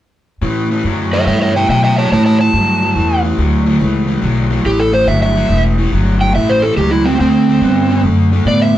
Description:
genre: electric blues shuffle.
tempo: 142 BPM.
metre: 4/4.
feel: swing 67% on 8ths.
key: A mixolydian.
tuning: A4 = 440 Hz.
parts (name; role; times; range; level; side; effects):
raw garage guitar; riff; 0.4-8.8 s; A2 to B3; -16 LUFS; left 1 dB; overdrive.
upright bass; bass; 0.4-8.8 s; E1 to B2; -15 LUFS; equal; none.
overdriven slide guitar; melody; 1.1-8.8 s; C4 to A5; -15 LUFS; right 2 dB; none.
room: moderate studio reverb, RT60 0.8 s.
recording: band playing live in one room, cassette tape.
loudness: -11 LUFS.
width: side -12 dB against mid.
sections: 0.4-8.8 A section.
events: none.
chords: 0.4 A7; 7.2 D7.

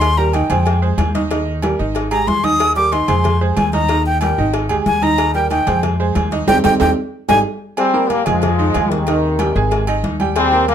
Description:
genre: latin, salsa.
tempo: 186 BPM.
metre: 4/4.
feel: straight.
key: unclear.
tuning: A4 = 439 Hz.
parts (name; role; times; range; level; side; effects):
breathy bright concert flute; melody; 0.0-7.4 s; G5 to Eb6; -17 LUFS; left 1 dB; none.
bright upright piano; accompaniment; 0.0-10.7 s; Eb3 to Bb5; -20 LUFS; right 4 dB; none.
upright bass; bass; 0.0-10.7 s; Ab1 to F2; -19 LUFS; left 1 dB; none.
agogo bells and timbales; percussion; 0.0-10.7 s; none; -24 LUFS; right 2 dB; none.
congas; percussion; 0.0-10.7 s; none; -24 LUFS; left 1 dB; none.
cowbell; percussion; 0.0-10.7 s; none; -26 LUFS; left 5 dB; none.
bright trombone section; melody; 7.8-10.7 s; C3 to C4; -16 LUFS; left 2 dB; none.
room: light reverb.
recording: minimal, uncompressed stereo recording.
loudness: -14 LUFS.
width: side -9 dB against mid.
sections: 0.0-7.8 A section; 7.8-10.7 B section.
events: flute solo 0.0-7.8; band accent 6.5-7.8; drum fill 7.3-7.8.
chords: 0.0 Eb6; 0.7 Fm7; 1.3 Eb; 2.0 Ab5; 2.6 Eb6; 3.2 Fm7; 3.9 Eb; 4.5 Ab5; 5.2 Eb6; 5.8 Fm7; 6.5 Eb6; 7.1 Ab5; 7.8 Abmaj13; 8.4 Fm7; 9.1 Abmaj7.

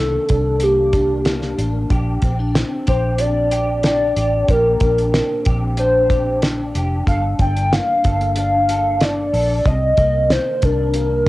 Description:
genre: indie pop, bedroom pop.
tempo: 93 BPM.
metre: 4/4.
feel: straight.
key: Bb major.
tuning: A4 = 439 Hz.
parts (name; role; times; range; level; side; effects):
warbly nostalgic lead; melody; 0.0-11.3 s; G4 to G5; -18 LUFS; equal; lush chorus, cassette tape.
electric guitar through a small old amp; accompaniment; 0.0-11.3 s; G2 to A4; -25 LUFS; left 1 dB; ensemble chorus, warbly pitch drift.
vintage muted fingered electric bass; bass; 0.0-11.3 s; F1 to C2; -21 LUFS; equal; none.
cloth-damped thuddy drum kit; drums; 0.3-11.3 s; hi-hat, kick drum, snare drum; -20 LUFS; equal; cassette tape.
room: light reverb.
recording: home recording on cassette.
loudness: -15 LUFS.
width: side -18 dB against mid.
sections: 0.0-11.3 A section.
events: none.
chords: 0.0 Cm9; 1.9 Bb69; 7.1 Gm9; 9.7 Cm9.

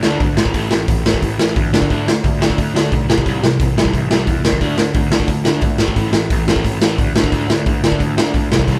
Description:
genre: punk rock.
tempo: 177 BPM.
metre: 4/4.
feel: straight.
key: unclear.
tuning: A4 = 438 Hz.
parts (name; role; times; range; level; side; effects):
crunchy overdriven guitar; riff; 0.0-8.8 s; A2 to D4; -23 LUFS; equal; none.
fuzz picked electric bass; bass; 0.0-8.8 s; A1 to E2; -24 LUFS; equal; overdrive.
raw garage drum kit; drums; 0.0-8.8 s; hi-hat, kick drum, snare drum; -18 LUFS; equal; none.
room: light reverb.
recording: band playing live in one room.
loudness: -16 LUFS.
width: mono.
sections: 0.0-8.8 A section.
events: none.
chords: 0.4 A5; 1.7 D5; 3.1 C; 4.6 D5; 5.8 A5; 7.1 D5.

